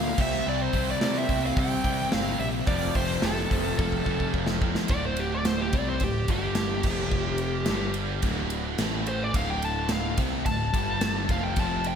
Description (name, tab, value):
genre	hard rock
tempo	108 BPM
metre	4/4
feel	straight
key	D minor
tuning	A4 = 439 Hz
part	bluesy overdriven lead guitar	melody	0.0-12.0 s	G4 to A5	-30 LUFS	equal	distortion, digital delay
part	cranked stack guitar	riff	0.0-12.0 s	D2 to C4	-33 LUFS	right 12 dB	overdrive, ensemble chorus
part	raw garage guitar	riff	0.0-4.9 s	F2 to C4	-37 LUFS	right 2 dB	overdrive, analog chorus
part	sludgy distorted guitar	riff	0.0-12.0 s	D2 to C4	-32 LUFS	left 10 dB	overdrive
part	growling picked electric bass	bass	0.0-12.0 s	D1 to C3	-32 LUFS	equal	overdrive
part	gated 80s drum kit	drums	0.2-12.0 s	crash cymbal, hi-hat, kick drum, ride cymbal, snare drum	-29 LUFS	equal	gated reverb
room	light reverb, small room reverb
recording	bright 1980s-style digital production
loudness	-24 LUFS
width	side -7 dB against mid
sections	0.0-4.9 A section; 4.9-12.0 B section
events	drum fill 3.8-4.9; lead electric guitar solo 4.9-12.0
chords	0.2 C5; 2.7 F; 4.9 D5; 6.3 G5; 6.8 F5; 7.7 G5; 8.2 D5; 8.8 A5; 9.3 D5; 10.7 G5; 11.3 F5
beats	| 0.46 1.01 1.57 2.12 | 2.68 3.23 3.79 4.35 | 4.90 5.46 6.01 6.57 | 7.12 7.68 8.23 8.79 | 9.34 9.90 10.46 11.01 | 11.57